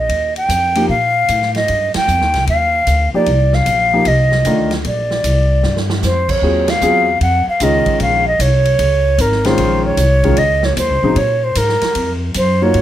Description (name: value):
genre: modal jazz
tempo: 152 BPM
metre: 4/4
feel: swing 66% on 8ths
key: C dorian, Eb dorian from 6.4 s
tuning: A4 = 440 Hz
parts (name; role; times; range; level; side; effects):
- reedy concert flute; melody; 0.0-12.8 s; Bb4 to G5; -15 LUFS; right 1 dB; plate reverb
- upright bass; bass; 0.0-12.8 s; Ab1 to Bb2; -17 LUFS; equal; none
- swinging big-band drum kit; drums; 0.1-12.8 s; crash cymbal, hi-hat, kick drum, ride cymbal, snare drum; -24 LUFS; right 2 dB; none
- warm grand piano; accompaniment; 0.8-12.8 s; Db3 to Ab4; -17 LUFS; left 2 dB; none
room: light reverb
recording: none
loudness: -12 LUFS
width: side -12 dB against mid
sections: 0.0-6.4 A section; 6.4-12.8 B section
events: band accent 1.9, 6.6; drum fill 5.6-6.0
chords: 0.0 Cm11; 4.8 Bb69; 6.4 Eb9sus4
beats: | 0.10 0.50 0.89 1.29 | 1.68 2.08 2.48 2.87 | 3.27 3.66 4.06 4.45 | 4.85 5.24 5.64 6.03 | 6.43 6.82 7.22 7.61 | 8.01 8.40 8.79 9.19 | 9.58 9.98 10.37 10.77 | 11.16 11.56 11.95 12.35 | 12.74